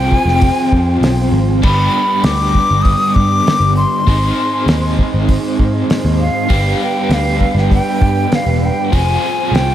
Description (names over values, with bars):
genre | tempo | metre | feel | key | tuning
psychedelic rock | 99 BPM | 4/4 | straight | G phrygian dominant | A4 = 440 Hz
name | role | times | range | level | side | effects
breathy hollow jazz flute | melody | 0.0-9.7 s | F5 to Eb6 | -17 LUFS | left 2 dB | analog delay
overdriven combo organ | sustained chords | 0.0-9.7 s | B3 to C5 | -23 LUFS | right 6 dB | none
overdriven electric guitar | riff | 0.0-9.7 s | G2 to Ab4 | -18 LUFS | equal | tremolo
picked electric bass | bass | 0.0-9.7 s | E1 to Ab2 | -16 LUFS | equal | none
cloth-damped thuddy drum kit | drums | 0.1-9.7 s | crash cymbal, hi-hat, kick drum, snare drum | -17 LUFS | equal | none
room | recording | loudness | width
light reverb, small room ambience | none | -11 LUFS | side -11 dB against mid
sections
0.0-9.7 A section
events
none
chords
0.0 Fm; 1.6 G; 4.1 Ab; 6.5 G; 8.9 Fm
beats
0.43 1.03 | 1.64 2.25 2.86 3.46 | 4.07 4.68 5.29 5.89 | 6.50 7.11 7.71 8.32 | 8.93 9.53